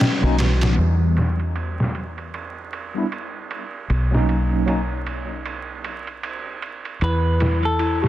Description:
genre	trip hop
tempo	77 BPM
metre	4/4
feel	swing 59% on 16ths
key	unclear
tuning	A4 = 441 Hz
part	celesta	arpeggios	0.0-0.8, 7.0-8.1 s	C#4 to D#5	-26 LUFS	left 2 dB	vintage 12-bit sampler grit, tape echo
part	trip hop sampler-style drum kit	drums	0.0-8.1 s	ride cymbal, snare drum	-26 LUFS	right 1 dB	low-pass filter on cymbals, low-pass filter on kick, low-pass filter on snare
part	tine electric piano	accompaniment	0.2-4.8 s	E3 to E4	-25 LUFS	equal	medium stereo tremolo, tape echo
part	deep dub fingered electric bass	bass	0.2-8.1 s	B1 to E2	-21 LUFS	equal	none
part	semi-hollow electric guitar	melody	7.0-8.0 s	A4 to B4	-23 LUFS	right 1 dB	tape echo
room	light reverb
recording	dense, heavily limited modern master, vinyl crackle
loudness	-20 LUFS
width	side -14 dB against mid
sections	0.8-8.1 A section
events	break 0.0-0.8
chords	0.0 Bmaj9; 0.8 Em; 3.9 Bmaj9; 7.0 E5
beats	0.00 | 0.78 1.55 2.33 3.11 | 3.89 4.67 5.45 6.23 | 7.01 7.79

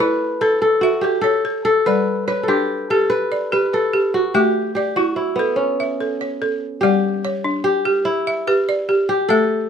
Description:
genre	west african traditional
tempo	97 BPM (dotted quarters)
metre	12/8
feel	straight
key	G lydian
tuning	A4 = 440 Hz
part	kora	melody	0.0-9.7 s	B3 to B4	-18 LUFS	left 1 dB	none
part	balafon	arpeggios	0.0-9.7 s	G3 to E5	-20 LUFS	right 1 dB	none
room	light reverb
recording	minimal, uncompressed stereo recording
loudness	-16 LUFS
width	side -7 dB against mid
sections	0.0-6.8 A section; 6.8-9.7 A section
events	none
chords	0.0 A; 1.9 G; 4.3 A; 6.8 G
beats	0.01 0.63 1.25 | 1.87 2.49 3.11 3.73 | 4.35 4.97 5.59 6.21 | 6.83 7.44 8.06 8.68 | 9.29

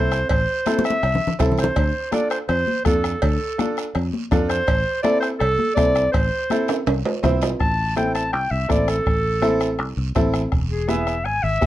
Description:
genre	latin, cumbia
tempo	164 BPM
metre	4/4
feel	straight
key	A minor, A harmonic minor from 7.6 s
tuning	A4 = 440 Hz
part	clear clarinet	melody	0.0-11.7 s	G#4 to A5	-22 LUFS	equal	none
part	bright upright piano	accompaniment	0.0-11.7 s	B3 to C5	-24 LUFS	right 1 dB	none
part	fingered electric bass	bass	0.0-11.7 s	E1 to F2	-24 LUFS	equal	none
part	bombo	percussion	0.1-11.7 s	none	-25 LUFS	equal	none
part	guiro	percussion	0.1-11.7 s	none	-40 LUFS	right 8 dB	none
part	cowbell and timbales	percussion	0.3-7.5 s	none	-26 LUFS	right 4 dB	none
part	congas	percussion	0.7-11.7 s	none	-26 LUFS	left 3 dB	none
room	moderate small room reverb, RT60 0.5 s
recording	worn, warbling old tape, cassette tape, warbly pitch drift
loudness	-18 LUFS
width	side -14 dB against mid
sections	0.0-7.6 A section; 7.6-11.7 B section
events	drum fill 0.7-1.8, 6.7-7.6; clarinet solo 7.6-11.7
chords	0.0 Am; 1.8 Dm; 4.7 Am; 10.5 E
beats	| 0.29 0.66 1.03 1.39 | 1.76 2.12 2.49 2.85 | 3.22 3.58 3.95 4.32 | 4.68 5.05 5.41 5.78 | 6.14 6.51 6.87 7.24 | 7.60 7.97 8.33 8.70 | 9.06 9.43 9.79 10.16 | 10.53 10.89 11.26 11.62

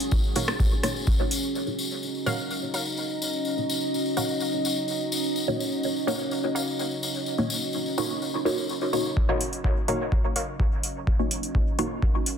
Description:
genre	dub techno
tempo	126 BPM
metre	4/4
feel	straight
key	Eb minor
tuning	A4 = 440 Hz
part	deep dark ambient pad	sustained chords	0.0-12.4 s	Db4 to Eb5	-31 LUFS	equal	chorus, built-in reverb, sidechain pumping
part	booming analog drum machine	drums	0.0-1.4, 9.4-12.4 s	hi-hat, rim click	-30 LUFS	equal	overdrive, low-pass filter on hats, soft clipping on snare, low-pass filter on snare, low-pass filter on room, dub echo
part	tambourine	percussion	0.0-9.1 s	none	-32 LUFS	left 4 dB	none
part	electronic kick drum	drums	0.1-1.2, 9.2-12.1 s	none	-24 LUFS	equal	overdrive
part	warbly dusty pluck	riff	0.4-11.8 s	Gb4 to F5	-36 LUFS	right 2 dB	chorus, sidechain pumping, dub echo
part	filtered dub chord stab	stabs	0.4-11.9 s	Bb3 to Db5	-29 LUFS	equal	phaser, dub echo
part	metallic inharmonic drone	texture	2.1-9.2 s	Eb4	-35 LUFS	right 2 dB	chorus, built-in reverb, sidechain pumping
room	light reverb, digital ambience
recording	dense, heavily limited modern master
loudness	-24 LUFS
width	side -8 dB against mid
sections	0.0-1.5 A section; 1.5-9.2 B section; 9.2-12.4 A section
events	filter sweep on synth stab 1.5-9.2, 9.2-12.4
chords	0.0 Ebm7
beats	0.12 0.60 1.07 | 1.55 2.02 2.50 2.98 | 3.45 3.93 4.41 4.88 | 5.36 5.83 6.31 6.79 | 7.26 7.74 8.22 8.69 | 9.17 9.64 10.12 10.60 | 11.07 11.55 12.03

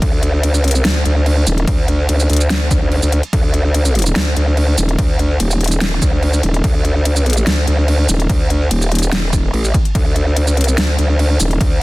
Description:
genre	heavy wobble dubstep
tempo	145 BPM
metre	4/4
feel	half-time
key	unclear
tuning	A4 = 439 Hz
part	growl bass	bass	0.0-11.8 s	Eb1 to D2	-14 LUFS	equal	chorus, overdrive
part	dubstep drum kit	drums	0.0-11.7 s	crash cymbal, hi-hat, shaker, snare drum	-21 LUFS	equal	overdrive
part	electronic kick drum	drums	0.0-11.7 s	none	-17 LUFS	equal	overdrive
room	little or no reverb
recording	dense, heavily limited modern master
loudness	-12 LUFS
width	side -20 dB against mid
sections	0.0-11.8 A section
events	none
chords	none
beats	| 0.02 0.43 0.85 1.26 | 1.68 2.09 2.50 2.92 | 3.33 3.74 4.16 4.57 | 4.99 5.40 5.81 6.23 | 6.64 7.05 7.47 7.88 | 8.30 8.71 9.12 9.54 | 9.95 10.37 10.78 11.19 | 11.61

